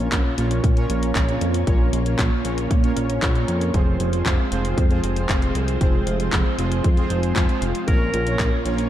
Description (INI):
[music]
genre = italo disco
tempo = 116 BPM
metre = 4/4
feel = straight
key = Bb minor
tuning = A4 = 440 Hz
[part]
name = string machine, full ensemble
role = sustained chords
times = 0.0-8.9 s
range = Ab3 to Db5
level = -28 LUFS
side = right 1 dB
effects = ensemble chorus
[part]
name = analog synth brass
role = stabs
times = 0.0-8.9 s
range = Bb2 to Db5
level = -26 LUFS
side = right 2 dB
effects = chorus, tape echo
[part]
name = chorused synth bass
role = bass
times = 0.0-8.9 s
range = F1 to Bb2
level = -24 LUFS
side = equal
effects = none
[part]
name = electronic kick drum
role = drums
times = 0.1-8.5 s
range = none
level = -20 LUFS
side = equal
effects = none
[part]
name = house drum kit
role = drums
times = 0.1-8.9 s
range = handclaps, hi-hat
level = -28 LUFS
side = left 1 dB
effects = none
[part]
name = warm alto saxophone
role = melody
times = 7.9-8.6 s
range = Bb4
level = -26 LUFS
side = left 1 dB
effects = tape echo
[sound]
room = light reverb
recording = dark, warm production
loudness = -18 LUFS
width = side -12 dB against mid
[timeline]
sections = 0.0-8.9 A section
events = none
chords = 0.0 Bbm; 3.7 Fm; 7.9 Bbm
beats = 0.12 0.64 1.16 | 1.67 2.19 2.71 3.22 | 3.74 4.26 4.78 5.29 | 5.81 6.33 6.84 7.36 | 7.88 8.40